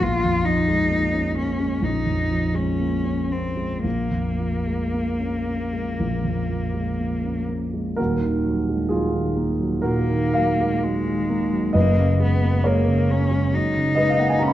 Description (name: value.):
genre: classical, impressionist duo for cello and grand piano.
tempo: 55-69 BPM.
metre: 4/4.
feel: rubato.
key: Eb minor.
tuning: A4 = 440 Hz.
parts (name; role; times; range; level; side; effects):
rich cello; melody; 0.0-14.5 s; Ab3 to F4; -25 LUFS; left 2 dB; none.
dark concert grand piano; accompaniment; 0.0-14.5 s; Eb1 to Cb6; -21 LUFS; equal; none.
room: wet recital hall reverb, RT60 1.6 s.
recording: dark, warm production.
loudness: -20 LUFS.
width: side -13 dB against mid.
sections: 0.0-8.0 A section; 8.0-14.5 B section.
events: none.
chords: 0.0 Bbm7; 8.0 Ebmadd9; 11.8 Gbadd9.